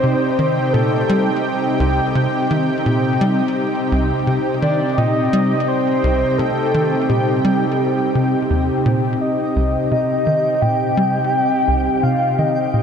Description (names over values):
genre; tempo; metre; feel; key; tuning
ambient, sequencer-driven space music; 85 BPM; 4/4; straight; C dorian; A4 = 440 Hz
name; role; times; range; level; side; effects
soft octave-layered synth lead; melody; 0.0-12.8 s; G4 to G5; -20 LUFS; left 1 dB; chorus, ping-pong delay
lush unison pad; sustained chords; 0.0-12.8 s; C3 to G5; -19 LUFS; equal; chorus
tight sequencer bass; riff; 0.0-12.8 s; C2 to G3; -21 LUFS; equal; wide subtle chorus, ping-pong delay
twinkling granular texture; texture; 0.1-12.8 s; Eb4 to G5; -40 LUFS; equal; none
room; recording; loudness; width
wet huge ambient reverb, RT60 7.3 s; dark, warm production; -15 LUFS; side -7 dB against mid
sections
0.0-12.8 A section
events
none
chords
0.0 Cm